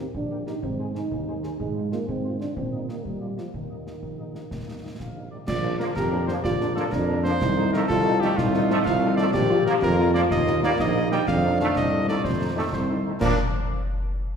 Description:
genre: military-style march for wind band.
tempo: 124 BPM (dotted quarters).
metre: 6/8.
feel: straight.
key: Eb major, Bb major from 5.5 s.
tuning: A4 = 441 Hz.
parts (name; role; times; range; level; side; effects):
mellow cornet; melody; 0.0-13.3 s; F4 to G5; -28 LUFS; right 1 dB; none.
dark euphonium; second line; 0.0-13.0 s; Eb3 to G4; -28 LUFS; right 1 dB; none.
mellow French horn section; accompaniment; 0.0-13.3 s; F3 to Ab4; -32 LUFS; left 3 dB; none.
warm tuba; bass; 0.0-13.3 s; Bb1 to Bb2; -27 LUFS; right 1 dB; none.
concert bass drum, concert snare drum and clash cymbals; drums; 0.1-13.4 s; none; -31 LUFS; left 1 dB; none.
warm trombone section; sustained chords; 5.8-13.3 s; Eb3 to D4; -30 LUFS; right 1 dB; none.
room: wet scoring stage reverb, RT60 2.1 s.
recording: heard from further back in the room.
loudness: -21 LUFS.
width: side -7 dB against mid.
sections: 0.0-5.5 A section; 5.5-13.2 B section.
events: none.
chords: 0.0 Eb; 0.6 Ab; 1.6 Fm/Ab; 2.6 Eb/Bb; 3.0 Bb7; 3.5 Eb; 5.5 Bb; 7.4 F7/C; 9.3 Bb; 10.3 Eb; 11.3 F7; 13.2 Bb.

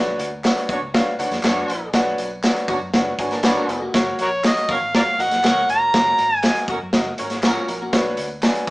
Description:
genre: uptempo 1960s-style soul.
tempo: 120 BPM.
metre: 4/4.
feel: straight.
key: unclear.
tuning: A4 = 440 Hz.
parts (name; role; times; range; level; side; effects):
clear grand piano; accompaniment; 0.0-8.7 s; D4 to G#5; -24 LUFS; equal; none.
vintage muted fingered electric bass; bass; 0.0-8.7 s; E#1 to F#2; -38 LUFS; equal; none.
crunchy breakbeat drum kit; drums; 0.2-8.7 s; hi-hat, kick drum, snare drum; -20 LUFS; equal; none.
tambourine and handclaps; percussion; 0.2-8.5 s; none; -33 LUFS; equal; none.
warm horn section; second line; 0.7-8.7 s; C#4 to C#5; -27 LUFS; right 1 dB; none.
clean electric guitar; riff; 3.3-4.1, 7.4-8.1 s; A#3 to C#5; -27 LUFS; left 1 dB; none.
overdriven harmonica; melody; 4.2-6.7 s; F#4 to A#5; -17 LUFS; equal; none.
room: moderate stone room reverb, RT60 1.0 s.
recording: band playing live in one room, small speaker sound.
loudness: -17 LUFS.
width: side -21 dB against mid.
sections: 0.0-8.7 A section.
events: none.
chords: 0.0 Bmadd9; 3.9 F#; 7.9 Bmadd9.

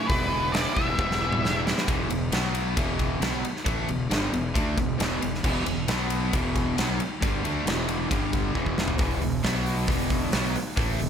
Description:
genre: classic rock.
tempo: 135 BPM.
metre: 4/4.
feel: straight.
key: E minor.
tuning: A4 = 445 Hz.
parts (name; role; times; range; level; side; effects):
octave-fuzz lead guitar; melody; 0.0-1.6 s; B4 to E5; -27 LUFS; left 1 dB; distortion, slapback echo, plate reverb.
cranked stack guitar; riff; 0.0-11.1 s; E2 to E4; -28 LUFS; equal; overdrive.
fuzz fingered electric bass; bass; 0.1-11.1 s; E1 to D2; -30 LUFS; equal; overdrive.
huge arena drum kit; drums; 0.1-11.1 s; crash cymbal, hi-hat, kick drum, ride cymbal, snare drum, toms; -27 LUFS; equal; none.
room: light reverb.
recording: none.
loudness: -23 LUFS.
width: side -8 dB against mid.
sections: 0.0-1.9 A section; 1.9-9.0 B section; 9.0-11.1 B section.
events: drum fill 1.0-1.9, 8.6-9.0.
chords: 0.1 Em; 1.9 E5; 2.3 B5; 2.8 Em; 5.9 B5; 6.3 Em; 8.1 G5; 8.6 E5; 9.4 B5; 9.9 E5.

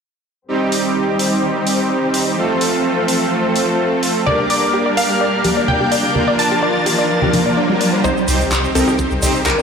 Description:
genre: progressive house.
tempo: 127 BPM.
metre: 4/4.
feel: straight.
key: unclear.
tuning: A4 = 443 Hz.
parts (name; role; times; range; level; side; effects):
clear studio string section; sustained chords; 0.5-9.6 s; C3 to D5; -22 LUFS; left 2 dB; sidechain pumping, low-pass filter.
soft supersaw; stabs; 0.5-9.6 s; G3 to C5; -18 LUFS; right 2 dB; sidechain pumping, ping-pong delay.
pop drum kit; drums; 0.7-9.6 s; handclaps, hi-hat, rim click; -22 LUFS; equal; overdrive, sidechain pumping on hats.
wide unison pluck; melody; 4.3-9.6 s; C4 to A5; -21 LUFS; left 1 dB; sidechain pumping, ping-pong delay.
airy dreamy lead; second line; 4.3-8.0 s; D6 to A6; -24 LUFS; left 1 dB; chorus, sidechain pumping, ping-pong delay.
congas and bongos; percussion; 4.3-7.8 s; none; -22 LUFS; right 1 dB; sidechain pumping on perc.
riser; sound effects; 5.9-9.6 s; none; -24 LUFS; equal; none.
tight sequenced synth; arpeggios; 4.4-9.6 s; G3 to D5; -22 LUFS; left 2 dB; chorus, sidechain pumping, ping-pong delay.
round analog bass; bass; 8.0-9.5 s; C2; -20 LUFS; equal; sidechain pumping.
electronic kick drum; drums; 8.0-9.6 s; none; -27 LUFS; equal; none.
tube shaker; percussion; 8.0-9.6 s; none; -27 LUFS; right 3 dB; none.
room: moderate huge ambient reverb, RT60 6.5 s.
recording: played on a big sound system in a bare room, large studio reverb.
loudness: -14 LUFS.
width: side -6 dB against mid.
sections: 0.5-8.0 A section; 8.0-9.6 B section.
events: filter sweep on string section 0.5-8.0; riser 5.9-8.0, 8.0-9.6; build-up 8.0-9.6.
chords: 0.5 Cm; 2.4 F; 4.3 Gm; 6.2 Bb; 8.0 Cm.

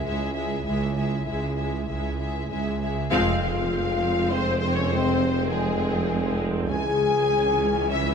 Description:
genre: cinematic, epic orchestral film score.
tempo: 100 BPM.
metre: 3/4.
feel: straight.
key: F harmonic minor.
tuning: A4 = 440 Hz.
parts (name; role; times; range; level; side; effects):
clear symphonic violin section; melody; 0.0-8.1 s; Ab4 to Ab5; -32 LUFS; left 3 dB; none.
warm symphonic violin section; second line; 0.0-8.1 s; Ab4 to Ab5; -31 LUFS; left 3 dB; none.
rich symphonic viola section; accompaniment; 0.0-8.1 s; Fb3 to Db4; -32 LUFS; right 2 dB; none.
warm French horn section; sustained chords; 0.0-8.1 s; Ab3 to Ab4; -27 LUFS; left 4 dB; none.
rich symphonic double bass section; bass; 0.1-8.1 s; F1 to Db2; -32 LUFS; right 4 dB; none.
warm symphonic cello section; bass; 0.1-8.1 s; Db2 to F2; -31 LUFS; right 3 dB; none.
warm tuba; bass; 0.1-8.1 s; F1 to Db2; -30 LUFS; right 4 dB; none.
dark trombone section; sustained chords; 3.1-6.9 s; Fb3 to Ab3; -37 LUFS; right 3 dB; none.
impact; sound effects; 3.1-4.9 s; none; -40 LUFS; equal; none.
room: moderate scoring stage reverb, RT60 2.0 s.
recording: none.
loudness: -22 LUFS.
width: side -6 dB against mid.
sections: 0.0-3.1 A section; 3.1-8.1 B section.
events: band accent 3.1-3.7; impact 3.1-4.9.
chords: 0.0 Dbm; 3.1 Fm; 6.7 Dbm.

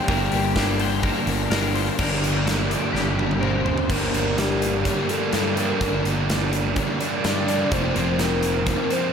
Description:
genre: rock, shoegaze and dream pop.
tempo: 126 BPM.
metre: 4/4.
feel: straight.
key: G minor.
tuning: A4 = 440 Hz.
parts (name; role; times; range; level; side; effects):
soft octave-layered synth lead; melody; 0.0-9.1 s; G4 to G5; -28 LUFS; left 2 dB; chorus, diffuse ambient delay.
twelve-string electric guitar; arpeggios; 0.0-3.9 s; G4 to D5; -31 LUFS; left 6 dB; ensemble chorus, diffuse ambient delay.
overdriven electric guitar; riff; 0.0-9.1 s; F2 to D4; -25 LUFS; right 7 dB; reverse reverb.
overdriven semi-hollow guitar; riff; 0.0-9.1 s; F2 to D4; -27 LUFS; left 9 dB; analog chorus.
fuzz picked electric bass; bass; 0.1-8.7 s; F1 to G2; -26 LUFS; equal; overdrive.
big rock drum kit; drums; 0.1-9.0 s; crash cymbal, hi-hat, kick drum, snare drum, toms; -28 LUFS; equal; none.
room: wet lush hall reverb, RT60 1.9 s.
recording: dreamy mix soaked in reverb.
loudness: -20 LUFS.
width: side -7 dB against mid.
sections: 0.0-2.0 A section; 2.0-3.9 B section; 3.9-9.1 C section.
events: drum fill 2.9-3.9.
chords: 0.0 Gm; 2.0 Gmadd9; 3.9 Gm; 7.7 Fsus4.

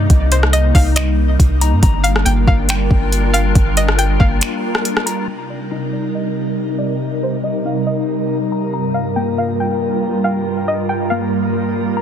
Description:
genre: hip hop, atmospheric cloud-rap.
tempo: 139 BPM.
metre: 4/4.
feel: half-time.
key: C minor.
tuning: A4 = 440 Hz.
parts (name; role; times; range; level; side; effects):
string-like resonator pluck; melody; 0.0-12.0 s; C5 to G5; -24 LUFS; equal; chorus, low-pass filter, tape echo.
glassy FM pad; sustained chords; 0.0-12.0 s; G2 to Bb4; -19 LUFS; right 1 dB; ensemble chorus, built-in reverb, sidechain pumping, low-pass filter.
clean electric guitar; arpeggios; 0.0-12.0 s; Bb3 to Bb5; -25 LUFS; left 7 dB; spring reverb, low-pass filter, tape echo.
soft 808-style bass; bass; 0.0-4.4 s; G1 to G2; -15 LUFS; equal; none.
smooth R&B drum kit; drums; 0.1-5.2 s; finger snaps, hi-hat, kick drum, rim click; -15 LUFS; equal; soft clipping on snare.
room: little or no reverb.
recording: dense, heavily limited modern master.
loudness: -14 LUFS.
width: side -9 dB against mid.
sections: 0.0-5.3 A section; 5.3-12.0 B section.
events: break 4.4-5.3.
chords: 0.0 Cm7; 1.8 Gm7; 5.3 Cm7; 8.7 Gm7.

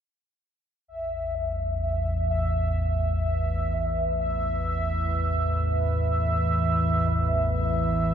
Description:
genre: dark ambient drone.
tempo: free time.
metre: none.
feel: none.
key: unclear.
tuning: A4 = 440 Hz.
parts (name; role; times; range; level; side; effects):
deep dark ambient pad; sustained chords; 1.6-8.1 s; A3 to B4; -37 LUFS; right 1 dB; chorus, built-in reverb.
analog drone; drone; 1.0-8.1 s; A1 to E2; -25 LUFS; equal; wide subtle chorus.
bubbling stepped-filter texture; texture; 0.9-8.1 s; E5; -28 LUFS; right 2 dB; chorus, built-in reverb.
room: wet echo chamber reverb, RT60 2.5 s.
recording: none.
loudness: -23 LUFS.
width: side -9 dB against mid.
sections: 0.9-8.1 A section.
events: fade-in on ambient pad 0.9-8.1; filter sweep on synth drone 0.9-8.1.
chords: 0.9 A5.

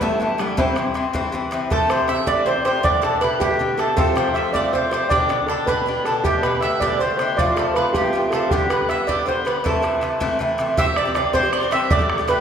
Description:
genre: celtic folk, Celtic jig.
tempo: 106 BPM (dotted quarters).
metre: 6/8.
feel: straight.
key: A minor.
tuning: A4 = 440 Hz.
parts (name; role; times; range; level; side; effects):
steel pan; melody; 0.0-12.4 s; G3 to E5; -21 LUFS; right 2 dB; none.
mandolin; second line; 0.0-12.4 s; G3 to E5; -27 LUFS; right 4 dB; none.
mellow tin whistle; second line; 0.0-12.4 s; F5 to E6; -28 LUFS; left 2 dB; none.
Irish bouzouki; accompaniment; 0.0-12.4 s; G2 to G4; -22 LUFS; left 1 dB; none.
bodhran; percussion; 0.0-12.4 s; none; -26 LUFS; right 1 dB; none.
room: wet recital hall reverb, RT60 1.5 s.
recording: recorded in a church or concert hall.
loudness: -17 LUFS.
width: side -8 dB against mid.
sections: 0.0-1.7 A section; 1.7-10.8 B section; 10.8-12.4 C section.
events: none.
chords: 0.0 Em; 0.6 C; 1.7 Am7; 2.8 Gadd9; 4.0 Fadd9; 5.1 G; 6.2 Gadd9; 7.4 F; 8.5 G; 9.6 Am; 10.8 C.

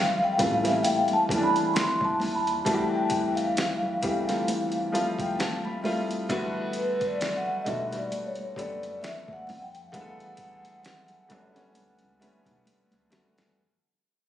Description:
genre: R&B, neo-soul.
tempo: 66 BPM.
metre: 4/4.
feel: swing 56% on 16ths.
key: unclear.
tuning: A4 = 440 Hz.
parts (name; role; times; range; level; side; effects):
vibraphone with soft mallets; melody; 0.0-12.6 s; B4 to C6; -28 LUFS; equal; plate reverb, tape echo.
warm grand piano; accompaniment; 0.0-13.6 s; D3 to B5; -29 LUFS; left 2 dB; plate reverb.
congas; percussion; 0.2-13.3 s; none; -37 LUFS; right 4 dB; none.
upright bass; bass; 0.4-13.6 s; A1 to F#2; -36 LUFS; right 2 dB; none.
boom bap sampler-style drum kit; drums; 0.4-13.6 s; hi-hat, kick drum, snare drum; -32 LUFS; right 1 dB; none.
room: moderate studio reverb, RT60 0.7 s.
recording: recorded on a phone in the room, studio reverb, compression.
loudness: -24 LUFS.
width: side -11 dB against mid.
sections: 0.0-13.6 A section.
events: fade-out 0.0-13.6; grand piano fill 4.5-6.3; drum fill 12.7-13.6.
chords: 0.0 Dm11; 6.3 Em11.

